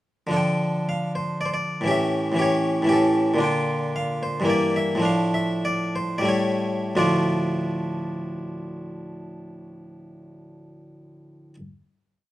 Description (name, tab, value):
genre	classical, baroque-style suite movement for harpsichord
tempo	83-120 BPM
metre	3/4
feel	rubato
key	D minor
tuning	A4 = 440 Hz
part	harpsichord	solo	0.3-11.6 s	D2 to G5	-22 LUFS	equal	none
room	light reverb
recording	minimal, uncompressed stereo recording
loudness	-21 LUFS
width	side -15 dB against mid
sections	0.4-7.0 A section; 7.0-11.1 final chord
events	slowing down 2.7-7.0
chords	0.4 Dm; 1.9 A7; 3.4 Bb; 4.5 Em7b5/G; 5.0 Dm/A; 6.3 A7; 7.0 Dm